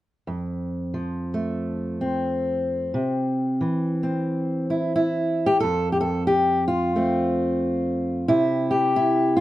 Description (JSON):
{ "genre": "folk, solo fingerstyle acoustic guitar", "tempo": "90 BPM", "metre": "4/4", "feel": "swing 61% on 8ths", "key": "F major", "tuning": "A4 = 439 Hz", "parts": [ { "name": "fingerpicked steel-string acoustic guitar", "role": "solo", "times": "0.3-9.4 s", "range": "F2 to A4", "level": "-21 LUFS", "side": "equal", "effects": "none" } ], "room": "light reverb", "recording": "dark, warm production", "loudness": "-21 LUFS", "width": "side -15 dB against mid", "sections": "0.3-5.6 A section; 5.6-9.4 B section", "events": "none", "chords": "0.3 F; 2.9 C; 5.6 F; 8.3 N.C.", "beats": "| 0.26 0.93 1.60 2.27 | 2.94 3.60 4.27 4.94 | 5.61 6.28 6.94 7.61 | 8.28 8.95" }